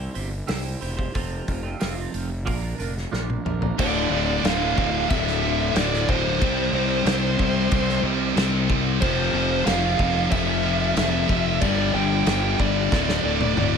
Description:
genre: quiet-loud alternative rock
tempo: 92 BPM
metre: 4/4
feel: straight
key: D minor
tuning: A4 = 440 Hz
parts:
  - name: twelve-string electric guitar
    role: arpeggios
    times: 0.0-3.8 s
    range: F2 to C5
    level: -32 LUFS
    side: right 6 dB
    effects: phaser
  - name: fuzz fingered electric bass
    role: bass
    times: 0.0-13.8 s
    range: D1 to C2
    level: -27 LUFS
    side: equal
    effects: overdrive
  - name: loose indie drum kit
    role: drums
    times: 0.2-13.7 s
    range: crash cymbal, hi-hat, kick drum, snare drum, toms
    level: -26 LUFS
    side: equal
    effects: none
  - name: high-gain lead guitar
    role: melody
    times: 3.8-13.8 s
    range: C5 to G5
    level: -26 LUFS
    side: equal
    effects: distortion, plate reverb, digital delay
  - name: distorted electric guitar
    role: riff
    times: 3.8-13.8 s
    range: D2 to C4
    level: -28 LUFS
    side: left 14 dB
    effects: distortion
  - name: heavy high-gain guitar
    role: riff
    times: 3.8-13.8 s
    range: D2 to C4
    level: -26 LUFS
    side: right 16 dB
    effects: distortion
  - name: overdriven semi-hollow guitar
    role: riff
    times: 3.8-13.8 s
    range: D2 to C4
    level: -27 LUFS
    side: equal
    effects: none
room: moderate studio ambience, RT60 0.5 s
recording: lossy compression artefacts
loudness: -20 LUFS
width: side -6 dB against mid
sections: 0.0-3.8 A section; 3.8-13.8 B section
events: drum fill 3.1-3.8, 12.9-13.8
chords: 0.0 C; 1.2 F; 2.5 Bb; 3.8 Dm; 6.4 C5; 9.0 F5; 11.6 G5; 12.9 D5

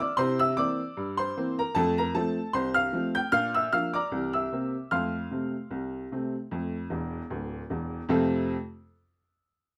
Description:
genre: ragtime piano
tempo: 76 BPM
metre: 2/4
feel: swing 55% on 16ths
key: F major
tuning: A4 = 440 Hz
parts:
  - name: clear upright piano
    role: solo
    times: 0.0-8.5 s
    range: D1 to G6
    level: -29 LUFS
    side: equal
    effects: none
room: moderate studio ambience, RT60 0.5 s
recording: none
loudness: -29 LUFS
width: mono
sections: 0.0-8.1 A section; 8.1-9.7 B section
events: upright piano fill 6.9-8.1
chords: 0.2 C7; 1.8 F; 3.3 Bb; 4.1 C7; 4.9 F

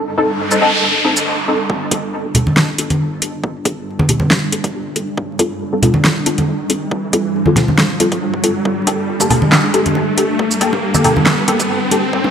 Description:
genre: deep dubstep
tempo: 138 BPM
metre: 4/4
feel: swing 54% on 16ths, half-time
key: G minor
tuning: A4 = 440 Hz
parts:
  - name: granular cloud pad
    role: sustained chords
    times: 0.0-12.3 s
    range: G3 to D4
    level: -22 LUFS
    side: right 1 dB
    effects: built-in reverb
  - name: noise sweep and riser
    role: sound effects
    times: 0.3-12.3 s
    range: none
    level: -21 LUFS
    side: equal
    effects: none
  - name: flickering grainy texture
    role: texture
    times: 0.0-1.7 s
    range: A4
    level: -27 LUFS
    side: right 5 dB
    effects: built-in reverb
  - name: filtered dub chord stab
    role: stabs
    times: 0.2-12.0 s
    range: Bb3 to A4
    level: -19 LUFS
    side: left 2 dB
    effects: ensemble chorus, dub echo
  - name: deep house drum kit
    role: drums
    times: 0.5-12.0 s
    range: handclaps, hi-hat, shaker, snare drum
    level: -16 LUFS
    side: equal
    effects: overdrive
  - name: saturated sub bass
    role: bass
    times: 1.7-12.3 s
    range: D1 to C2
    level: -36 LUFS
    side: right 1 dB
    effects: none
  - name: electronic kick drum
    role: drums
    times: 1.7-12.2 s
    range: none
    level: -23 LUFS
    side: right 1 dB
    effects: overdrive, high-pass filter on kick
  - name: congas and bongos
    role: percussion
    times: 2.3-12.3 s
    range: none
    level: -17 LUFS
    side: right 1 dB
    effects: none
room: moderate lush hall reverb, RT60 2.1 s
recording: vinyl crackle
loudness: -13 LUFS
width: side -8 dB against mid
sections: 0.0-1.7 A section; 1.7-12.3 B section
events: filter sweep on ambient pad 0.0-1.7, 1.7-12.3; noise sweep 0.3-1.7; build-up 1.7-12.3; riser 1.7-12.3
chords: 0.0 Adim; 1.7 Gmadd9; 5.2 F; 8.7 Gmadd9

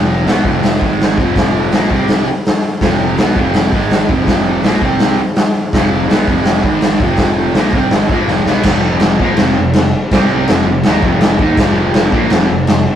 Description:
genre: garage rock duo or trio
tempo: 164 BPM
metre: 4/4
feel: straight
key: F minor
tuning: A4 = 440 Hz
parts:
  - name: fuzz guitar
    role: riff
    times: 0.0-12.8 s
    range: F2 to Eb4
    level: -15 LUFS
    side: right 1 dB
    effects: distortion
  - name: bell-like tine electric piano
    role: bass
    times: 0.0-12.8 s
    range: F1 to Eb2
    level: -22 LUFS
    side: equal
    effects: medium stereo tremolo
  - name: raw garage drum kit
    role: drums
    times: 0.3-12.8 s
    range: crash cymbal, hi-hat, kick drum, snare drum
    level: -13 LUFS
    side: left 1 dB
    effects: none
room: light reverb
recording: rough rehearsal-room recording, warm saturation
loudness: -10 LUFS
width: side -10 dB against mid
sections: 0.0-8.6 A section; 8.6-13.0 B section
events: drum fill 8.3-8.6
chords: 0.0 F5; 0.8 Ab5; 1.2 F5; 1.9 C5; 2.8 F5; 3.7 Ab5; 4.1 F5; 4.8 C5; 5.7 F5; 6.6 Ab5; 7.0 Fm; 8.6 F5; 10.1 C5; 10.5 F5

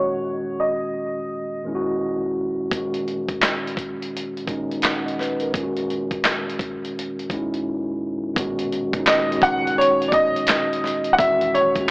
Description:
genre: lo-fi hip hop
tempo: 85 BPM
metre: 4/4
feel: swing 63% on 16ths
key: B major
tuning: A4 = 440 Hz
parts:
  - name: warm upright piano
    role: melody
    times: 0.0-2.3, 9.1-11.9 s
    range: C#5 to F#5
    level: -19 LUFS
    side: equal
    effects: low-pass filter
  - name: mellow tine electric piano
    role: accompaniment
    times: 0.0-11.9 s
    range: E2 to F#5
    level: -25 LUFS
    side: equal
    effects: slow stereo tremolo, cassette tape, low-pass filter
  - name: dusty soul sampler-style drum kit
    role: drums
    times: 2.7-11.9 s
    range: handclaps, hi-hat, kick drum, snare drum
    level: -23 LUFS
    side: equal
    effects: none
  - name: deep dub fingered electric bass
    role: bass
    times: 8.4-11.7 s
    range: B1 to E2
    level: -37 LUFS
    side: equal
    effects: none
room: moderate spring reverb, RT60 2.2 s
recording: AM radio sound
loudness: -20 LUFS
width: side -25 dB against mid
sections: 0.0-8.4 A section; 8.4-11.9 B section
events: filter sweep 0.0-8.4; drums muted 7.7-8.4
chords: 0.0 Emaj9; 2.7 Bmaj13/A# (rootless); 5.5 Emaj9; 8.4 Bmaj9; 11.2 Emaj9

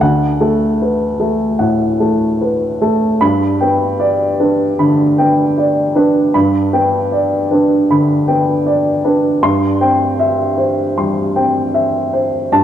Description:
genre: neoclassical minimalist piano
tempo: 77 BPM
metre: 4/4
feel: rubato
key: G major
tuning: A4 = 440 Hz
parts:
  - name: dark upright piano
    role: solo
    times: 0.0-12.6 s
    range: D2 to C6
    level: -12 LUFS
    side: equal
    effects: none
room: wet plate reverb, RT60 2.4 s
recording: heard from further back in the room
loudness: -12 LUFS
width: side -10 dB against mid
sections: 0.0-3.2 A section; 3.2-12.6 B section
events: none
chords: 0.0 D; 3.2 G; 9.4 C/G

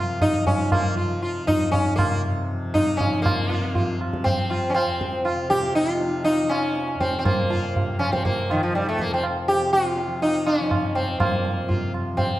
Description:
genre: indian classical, Hindustani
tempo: 120 BPM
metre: 4/4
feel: straight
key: unclear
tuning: A4 = 439 Hz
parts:
  - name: sitar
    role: melody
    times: 0.0-12.4 s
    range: Eb3 to G4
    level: -22 LUFS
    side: equal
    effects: none
  - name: tanpura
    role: drone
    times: 0.0-12.4 s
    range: F2 to F3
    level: -31 LUFS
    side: left 1 dB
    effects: none
  - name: tabla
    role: percussion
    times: 0.2-12.4 s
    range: none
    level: -25 LUFS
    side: right 1 dB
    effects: none
room: wet recital hall reverb, RT60 1.4 s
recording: none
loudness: -20 LUFS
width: side -15 dB against mid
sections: 0.0-3.3 A section; 3.3-12.4 B section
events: speeding up 0.0-12.4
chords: none

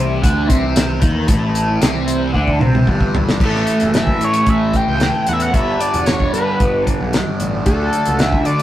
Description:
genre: psychedelic rock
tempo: 113 BPM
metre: 4/4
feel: straight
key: unclear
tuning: A4 = 438 Hz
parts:
  - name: bright tonewheel organ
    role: sustained chords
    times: 0.0-8.6 s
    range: E3 to G4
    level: -29 LUFS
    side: right 1 dB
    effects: none
  - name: fuzz guitar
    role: riff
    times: 0.0-8.6 s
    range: G2 to D#4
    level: -18 LUFS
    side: equal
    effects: distortion, phaser
  - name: fuzz picked electric bass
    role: bass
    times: 0.0-8.6 s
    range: E1 to D3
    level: -21 LUFS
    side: equal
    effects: overdrive
  - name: damped 70s drum kit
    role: drums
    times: 0.2-8.6 s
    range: crash cymbal, hi-hat, kick drum, snare drum, toms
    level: -17 LUFS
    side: equal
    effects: none
  - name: overdriven synth lead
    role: melody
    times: 3.5-8.6 s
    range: A4 to G5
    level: -19 LUFS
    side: equal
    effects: distortion, slapback echo
room: moderate stone room reverb, RT60 1.3 s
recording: rough rehearsal-room recording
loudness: -14 LUFS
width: side -13 dB against mid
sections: 0.0-3.4 A section; 3.4-8.6 B section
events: drum fill 2.4-3.4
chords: 0.0 A5; 3.4 A; 5.5 G; 7.7 D

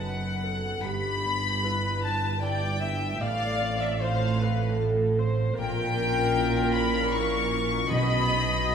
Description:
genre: classical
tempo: 76 BPM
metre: 3/4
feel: rubato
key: unclear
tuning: A4 = 442 Hz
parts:
  - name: warm studio violin section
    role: melody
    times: 0.0-8.7 s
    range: E5 to C#6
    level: -30 LUFS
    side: left 4 dB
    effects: none
  - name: rich studio violin section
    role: second line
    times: 0.0-8.7 s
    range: E5 to C#6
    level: -33 LUFS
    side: left 2 dB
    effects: none
  - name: dark chamber viola section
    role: accompaniment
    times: 0.0-8.7 s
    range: G4 to E5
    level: -31 LUFS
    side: right 1 dB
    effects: none
  - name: concert harp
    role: arpeggios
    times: 0.0-8.7 s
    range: F#2 to C#5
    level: -33 LUFS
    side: left 6 dB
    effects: none
  - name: dark symphonic double bass section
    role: bass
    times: 0.0-8.7 s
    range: F#1 to B1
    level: -31 LUFS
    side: right 4 dB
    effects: none
  - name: warm symphonic cello section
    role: bass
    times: 0.0-8.7 s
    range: F#2 to B2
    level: -31 LUFS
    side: right 3 dB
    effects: none
  - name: timpani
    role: percussion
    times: 7.9-8.7 s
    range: B2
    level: -31 LUFS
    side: right 3 dB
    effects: none
room: moderate scoring stage reverb, RT60 1.9 s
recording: minimal, uncompressed stereo recording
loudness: -24 LUFS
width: side -7 dB against mid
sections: 0.0-8.7 A section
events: none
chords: 0.0 B7/F#; 0.8 Em/G; 3.2 F/A; 5.6 A#dim7; 7.9 B

